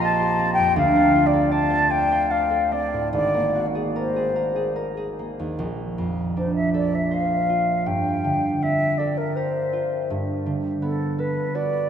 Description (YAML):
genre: classical, impressionist duo for flute and harp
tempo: 71-84 BPM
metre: 3/4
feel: rubato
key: unclear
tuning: A4 = 440 Hz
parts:
  - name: mellow concert flute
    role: melody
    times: 0.0-11.9 s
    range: A4 to A5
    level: -22 LUFS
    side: left 1 dB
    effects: none
  - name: concert harp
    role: accompaniment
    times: 0.0-11.9 s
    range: Ab1 to F5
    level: -24 LUFS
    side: right 2 dB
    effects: none
room: wet cathedral reverb, RT60 5.8 s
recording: in a vast, echoing space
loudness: -20 LUFS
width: side -8 dB against mid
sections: 0.0-5.6 A section; 5.6-11.9 B section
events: none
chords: 0.0 F9sus4/Bb; 0.8 Dm7; 3.1 Ab9; 5.6 Bbmaj9; 7.9 Gm11; 10.1 Gmaj9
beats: 0.02 | 0.75 1.50 2.29 | 3.11 3.94 4.76 | 5.58 6.35 7.11 | 7.86 8.60 9.35 | 10.09 10.81 11.54